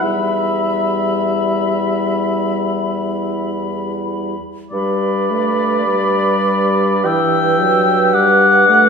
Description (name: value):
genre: classical, slow romantic movement for wind quintet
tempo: 51 BPM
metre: 4/4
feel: rubato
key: E minor, G major from 4.7 s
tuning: A4 = 440 Hz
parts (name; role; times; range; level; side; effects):
- concert flute; melody; 0.0-8.9 s; B5 to E6; -22 LUFS; left 5 dB; none
- warm oboe; second line; 0.0-8.9 s; D5 to G5; -17 LUFS; left 1 dB; none
- mellow French horn; accompaniment; 0.0-8.9 s; E3 to A3; -21 LUFS; left 2 dB; none
- mellow clarinet; accompaniment; 0.0-8.9 s; E4 to B4; -24 LUFS; right 6 dB; none
- mellow bassoon; bass; 0.0-8.9 s; E2 to G2; -21 LUFS; right 2 dB; none
room: wet scoring stage reverb, RT60 1.7 s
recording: recorded in a church or concert hall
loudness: -14 LUFS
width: side -6 dB against mid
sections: 0.0-4.7 A section; 4.7-8.9 B section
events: none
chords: 0.0 Em; 4.7 G